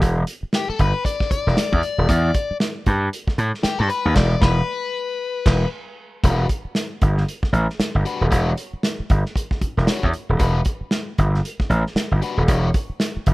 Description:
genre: funk.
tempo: 115 BPM.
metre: 4/4.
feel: swing 60% on 16ths.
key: E dorian.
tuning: A4 = 440 Hz.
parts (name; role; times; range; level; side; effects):
gritty slap bass; bass; 0.0-13.3 s; D#1 to A2; -18 LUFS; equal; overdrive.
warm soul drum kit; drums; 0.0-13.3 s; crash cymbal, hi-hat, kick drum, snare drum; -22 LUFS; equal; none.
biting overdriven guitar; accompaniment; 0.6-12.7 s; G3 to D5; -26 LUFS; left 5 dB; none.
room: small room ambience.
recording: rough home demo mix.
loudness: -18 LUFS.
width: side -20 dB against mid.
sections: 0.0-6.2 A section; 6.2-13.3 B section.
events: overdriven electric guitar solo 0.0-6.2; band accent 4.2-6.2.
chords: 0.0 Em7; 6.2 Em9.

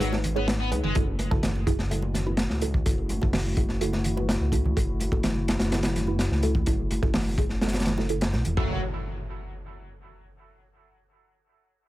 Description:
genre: breakbeat, breaks.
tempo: 126 BPM.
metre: 4/4.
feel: straight.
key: F# dorian.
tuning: A4 = 443 Hz.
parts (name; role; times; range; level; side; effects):
dark analog pad; sustained chords; 0.0-8.8 s; G#3 to A5; -34 LUFS; left 2 dB; chorus, sidechain pumping.
fuzz guitar; riff; 0.0-0.9, 8.6-8.8 s; F#3 to B3; -34 LUFS; left 1 dB; distortion, dub echo.
filtered dub chord stab; stabs; 0.0-8.8 s; D#4 to C#5; -33 LUFS; right 3 dB; phaser, dub echo.
phased detuned saw bass; bass; 0.0-8.8 s; E1 to C#2; -28 LUFS; equal; phaser.
crunchy breakbeat drum kit; drums; 0.0-8.7 s; hi-hat, kick drum, snare drum; -26 LUFS; equal; none.
electronic hi-hat; drums; 0.0-8.6 s; none; -50 LUFS; equal; none.
congas; percussion; 0.0-8.6 s; none; -36 LUFS; right 3 dB; none.
impact; sound effects; 8.6-10.5 s; none; -35 LUFS; equal; none.
room: little or no reverb.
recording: none.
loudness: -23 LUFS.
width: side -16 dB against mid.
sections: 0.0-8.6 A section; 8.6-10.5 B section.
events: filter sweep on detuned saw bass 0.0-8.6; filter sweep on synth stab 0.0-8.6.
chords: 0.0 G#m; 1.0 F#m7.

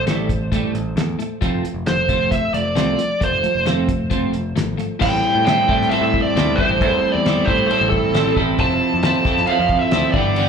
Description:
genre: indie rock.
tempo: 134 BPM.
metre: 4/4.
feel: straight.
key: A minor.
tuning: A4 = 440 Hz.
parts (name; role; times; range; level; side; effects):
bluesy overdriven lead guitar; melody; 0.0-10.5 s; A4 to A5; -20 LUFS; right 2 dB; distortion, slapback echo, analog delay.
twelve-string electric guitar; riff; 0.0-10.5 s; G2 to A4; -20 LUFS; equal; double-tracked left and right, slapback echo.
picked electric bass; bass; 0.0-10.5 s; F1 to A2; -23 LUFS; left 1 dB; none.
cloth-damped thuddy drum kit; drums; 0.1-10.5 s; crash cymbal, hi-hat, kick drum, snare drum; -23 LUFS; left 1 dB; none.
room: light reverb.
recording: live gig heard through the venue's PA, club reverb.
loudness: -16 LUFS.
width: side -6 dB against mid.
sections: 0.0-5.0 A section; 5.0-10.5 B section.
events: none.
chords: 0.0 A7(no3); 1.4 F; 5.0 Am7; 8.6 Fmaj7.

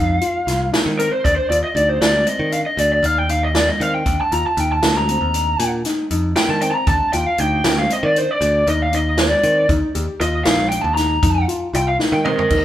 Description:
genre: progressive instrumental, band music in an uneven meter.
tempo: 234 BPM (eighths).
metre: 11/8.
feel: straight.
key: Eb lydian.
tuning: A4 = 440 Hz.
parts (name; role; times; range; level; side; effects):
lead guitar through a small cranked amp; melody; 0.0-12.6 s; Bb4 to Bb5; -18 LUFS; equal; overdrive.
dark grand piano; arpeggios; 0.0-12.6 s; C4 to G4; -25 LUFS; left 2 dB; none.
modern bright picked electric bass; bass; 0.0-12.6 s; Bb1 to Eb3; -22 LUFS; equal; none.
swinging big-band drum kit; drums; 0.2-12.6 s; crash cymbal, hi-hat, kick drum, snare drum, toms; -21 LUFS; right 1 dB; none.
vibraphone with hard mallets; second line; 12.2-12.6 s; Bb4; -19 LUFS; right 3 dB; none.
room: moderate large studio reverb, RT60 1.3 s.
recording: band playing live in one room.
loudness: -15 LUFS.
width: side -12 dB against mid.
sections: 0.0-12.5 A section.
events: lead electric guitar solo 0.0-12.5; drum fill 12.0-12.5.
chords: 0.0 Ebsus2; 1.2 Ebmaj7(no3)/D; 9.7 Ebsus2.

